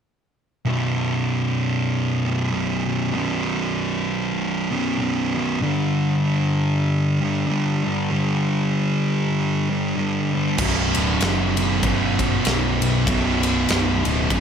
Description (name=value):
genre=stoner and doom metal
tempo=97 BPM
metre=4/4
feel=swing 58% on 8ths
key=B minor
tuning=A4 = 440 Hz
part: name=thick fuzz guitar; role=riff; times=0.7-14.4 s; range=B1 to G3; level=-24 LUFS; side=left 7 dB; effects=distortion
part: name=thick fuzz guitar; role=riff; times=0.7-14.4 s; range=B1 to G3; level=-22 LUFS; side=right 6 dB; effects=distortion
part: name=thick fuzz guitar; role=riff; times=10.6-14.4 s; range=B1 to B2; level=-25 LUFS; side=equal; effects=distortion
part: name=picked electric bass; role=bass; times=10.6-14.4 s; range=B0 to B1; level=-25 LUFS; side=left 1 dB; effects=overdrive
part: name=big rock drum kit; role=drums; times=10.6-14.4 s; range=crash cymbal, kick drum, ride cymbal, snare drum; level=-24 LUFS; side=left 1 dB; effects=none
room=moderate large studio reverb, RT60 0.8 s, small room reverb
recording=none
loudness=-19 LUFS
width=side -7 dB against mid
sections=0.7-10.6 A section; 10.6-14.4 B section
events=none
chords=0.7 B5; 5.6 G5; 10.6 Bm